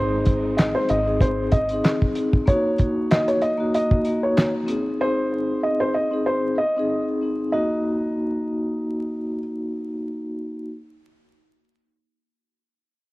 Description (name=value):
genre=hip hop, boom-bap hip-hop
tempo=95 BPM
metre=4/4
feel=swing 55% on 16ths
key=Eb dorian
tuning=A4 = 441 Hz
part: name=dark upright piano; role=melody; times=0.0-9.4 s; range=C5 to Eb5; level=-24 LUFS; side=equal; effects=cassette tape
part: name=vibraphone with soft mallets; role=accompaniment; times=0.0-10.7 s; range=Bb3 to Ab4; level=-24 LUFS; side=left 1 dB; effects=none
part: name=warm studio string section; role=sustained chords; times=0.0-2.4 s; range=Ab3 to Eb4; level=-38 LUFS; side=right 1 dB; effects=none
part: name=deep dub fingered electric bass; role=bass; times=0.0-1.8 s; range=Ab1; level=-28 LUFS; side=equal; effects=none
part: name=cloth-damped thuddy drum kit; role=drums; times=0.3-4.8 s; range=handclaps, hi-hat, kick drum, snare drum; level=-20 LUFS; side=equal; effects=cassette tape
room=light reverb, studio reverb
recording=home recording on cassette, vinyl crackle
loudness=-20 LUFS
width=side -20 dB against mid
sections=0.0-7.5 A section; 7.5-10.1 B section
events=none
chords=0.0 Ab; 2.5 Ebm; 4.7 Ab; 7.5 Ebm